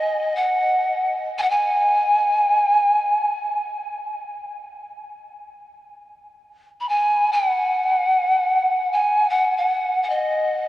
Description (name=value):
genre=world meditative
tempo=free time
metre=none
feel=none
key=unclear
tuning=A4 = 442 Hz
part: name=breathy mellow pan flute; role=solo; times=0.0-10.7 s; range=D#5 to B5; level=-18 LUFS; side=equal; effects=diffuse ambient delay
room=wet huge ambient reverb, RT60 6.8 s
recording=worn, warbling old tape, cassette tape, warbly pitch drift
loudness=-18 LUFS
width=side -15 dB against mid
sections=0.0-10.7 A section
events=none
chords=none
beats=free time